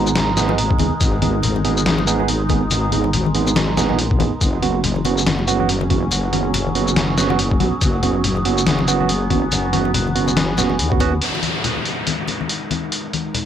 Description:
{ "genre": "deep dubstep", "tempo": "141 BPM", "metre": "4/4", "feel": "swing 58% on 16ths, half-time", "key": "G# minor", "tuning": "A4 = 440 Hz", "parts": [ { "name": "overtone-sweeping drone", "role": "sustained chords", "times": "0.0-13.5 s", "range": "F#3 to A#4", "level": "-26 LUFS", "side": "equal", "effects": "chorus, built-in reverb, phaser, cassette tape" }, { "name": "tine electric piano", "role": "stabs", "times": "0.0-11.1 s", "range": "B3 to G#4", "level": "-22 LUFS", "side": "right 9 dB", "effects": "overdrive, cassette tape, dub echo" }, { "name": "wobble bass", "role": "bass", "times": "0.0-11.2 s", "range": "F#1 to D#2", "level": "-20 LUFS", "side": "left 1 dB", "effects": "chorus, tube saturation" }, { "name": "trip hop sampler-style drum kit", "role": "drums", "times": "0.1-13.4 s", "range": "hi-hat, shaker, snare drum", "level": "-22 LUFS", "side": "left 1 dB", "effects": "cassette tape" }, { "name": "congas", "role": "percussion", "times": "0.1-13.4 s", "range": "none", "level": "-26 LUFS", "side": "left 10 dB", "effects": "none" }, { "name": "electronic kick drum", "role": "drums", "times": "0.7-11.1 s", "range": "none", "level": "-20 LUFS", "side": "left 1 dB", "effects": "cassette tape" }, { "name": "downlifter", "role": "sound effects", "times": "11.2-13.5 s", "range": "none", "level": "-24 LUFS", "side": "left 1 dB", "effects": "none" } ], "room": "light reverb", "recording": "home recording on cassette", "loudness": "-16 LUFS", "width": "side -9 dB against mid", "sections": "0.0-11.2 A section; 11.2-13.5 B section", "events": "none", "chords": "0.0 G#m; 4.4 F#sus4; 11.2 G#5", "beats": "0.16 0.58 | 1.01 1.43 1.86 2.28 | 2.71 3.13 3.56 3.98 | 4.41 4.84 5.26 5.69 | 6.11 6.54 6.96 7.39 | 7.82 8.24 8.67 9.09 | 9.52 9.94 10.37 10.79 | 11.22 11.64 12.07 12.50 | 12.92 13.35" }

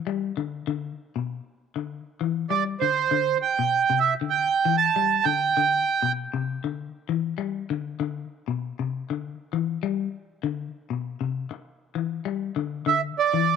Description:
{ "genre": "afrobeat", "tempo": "98 BPM", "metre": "4/4", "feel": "swing 56% on 16ths", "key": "unclear", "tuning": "A4 = 440 Hz", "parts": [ { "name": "semi-hollow electric guitar", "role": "arpeggios", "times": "0.1-13.6 s", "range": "B2 to G3", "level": "-28 LUFS", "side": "left 9 dB", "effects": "none" }, { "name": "accordion", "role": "melody", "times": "2.5-6.1, 12.9-13.6 s", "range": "C5 to A5", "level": "-21 LUFS", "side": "right 7 dB", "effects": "none" } ], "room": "moderate spring reverb, RT60 1.6 s, small room ambience", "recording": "1960s-style stereo with parts hard left and right", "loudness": "-24 LUFS", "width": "side -6 dB against mid", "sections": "0.0-12.9 A section", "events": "none", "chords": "0.0 Cmaj9/B (rootless); 12.9 Dsus2", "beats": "0.06 | 0.67 1.28 1.89 2.50 | 3.12 3.73 4.34 4.95 | 5.56 6.17 6.78 7.39 | 8.00 8.61 9.22 9.83 | 10.44 11.05 11.65 12.26 | 12.87 13.48" }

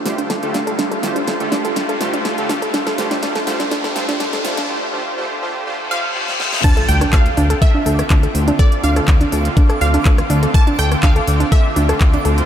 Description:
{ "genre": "progressive house", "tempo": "123 BPM", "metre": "4/4", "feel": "straight", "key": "D minor", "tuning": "A4 = 435 Hz", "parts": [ { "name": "shimmering ambient pad", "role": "sustained chords", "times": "0.0-12.5 s", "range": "D3 to F4", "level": "-25 LUFS", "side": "equal", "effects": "chorus, built-in reverb, sidechain pumping" }, { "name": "riser, reverse cymbal and impact", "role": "sound effects", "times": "0.0-8.6 s", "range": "none", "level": "-26 LUFS", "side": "left 2 dB", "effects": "none" }, { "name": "soft supersaw", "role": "stabs", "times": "0.1-6.5 s", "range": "D3 to C5", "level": "-25 LUFS", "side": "right 2 dB", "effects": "sidechain pumping, low-pass filter, analog delay" }, { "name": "fat analog bass", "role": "bass", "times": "0.1-12.4 s", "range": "D2", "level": "-19 LUFS", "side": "equal", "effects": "sidechain pumping, high-pass filter" }, { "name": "pop drum kit", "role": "drums", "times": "0.1-12.5 s", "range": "crash cymbal, handclaps, hi-hat, rim click, snare drum", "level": "-25 LUFS", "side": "equal", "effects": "studio reverb" }, { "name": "soft round pluck", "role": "arpeggios", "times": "0.2-12.3 s", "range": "D4 to A4", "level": "-22 LUFS", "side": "right 1 dB", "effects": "chorus, sidechain pumping, analog delay" }, { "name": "wide unison pluck", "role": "melody", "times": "5.9-12.5 s", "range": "D5 to A5", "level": "-22 LUFS", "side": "right 1 dB", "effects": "phaser, ping-pong delay" }, { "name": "electronic kick drum", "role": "drums", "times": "6.6-12.1 s", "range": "none", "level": "-12 LUFS", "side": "equal", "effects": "studio reverb" }, { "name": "twinkling granular texture", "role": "texture", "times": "6.9-12.5 s", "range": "D6", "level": "-31 LUFS", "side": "equal", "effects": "built-in reverb, wide subtle chorus, sidechain pumping" } ], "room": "moderate huge ambient reverb, RT60 8.5 s", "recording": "dreamy mix soaked in reverb, high-pass filter", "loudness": "-14 LUFS", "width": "side -10 dB against mid", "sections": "0.0-6.6 A section; 6.6-12.5 B section", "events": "build-up 0.0-6.6; drum fill 0.0-4.7, 6.3-6.6; riser 0.0-4.7; filter sweep on synth pluck 0.0-6.6; filter sweep on supersaw synth 0.0-6.6; filter sweep 0.0-6.6; reverse cymbal 5.8-6.6; drop 6.6-12.5; impact 6.6-8.6", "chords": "0.0 Fadd9/D; 6.6 Dm7", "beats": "0.30 | 0.79 1.27 1.76 2.25 | 2.74 3.23 3.71 4.20 | 4.69 5.18 5.67 6.15 | 6.64 7.13 7.62 8.10 | 8.59 9.08 9.57 10.05 | 10.54 11.03 11.52 12.01" }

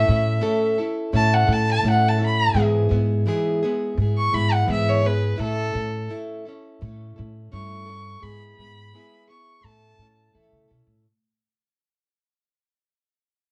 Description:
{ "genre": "rock", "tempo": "85 BPM", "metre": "4/4", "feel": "straight", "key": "A major", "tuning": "A4 = 440 Hz", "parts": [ { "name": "rich fiddle", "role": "melody", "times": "0.0-10.3 s", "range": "A4 to C#6", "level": "-26 LUFS", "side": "equal", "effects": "plate reverb" }, { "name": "picked plugged-in old ladder-braced acoustic guitar", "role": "accompaniment", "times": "0.0-11.1 s", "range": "G#2 to A4", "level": "-28 LUFS", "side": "equal", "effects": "none" }, { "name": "upright bass", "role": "bass", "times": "0.0-11.0 s", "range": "G2 to E3", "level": "-25 LUFS", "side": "equal", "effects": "none" } ], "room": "light reverb", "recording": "worn, warbling old tape, cassette tape, warbly pitch drift", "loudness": "-21 LUFS", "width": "mono", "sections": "0.0-11.1 A section", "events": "fade-out 0.0-11.1; fiddle solo 0.0-11.1", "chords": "0.0 A; 2.6 E/G#; 5.4 A; 8.2 E/G#; 9.6 A", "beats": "0.43 1.14 1.85 | 2.56 3.27 3.98 4.69 | 5.40 6.11 6.82 7.52 | 8.23 8.94 9.64 10.35" }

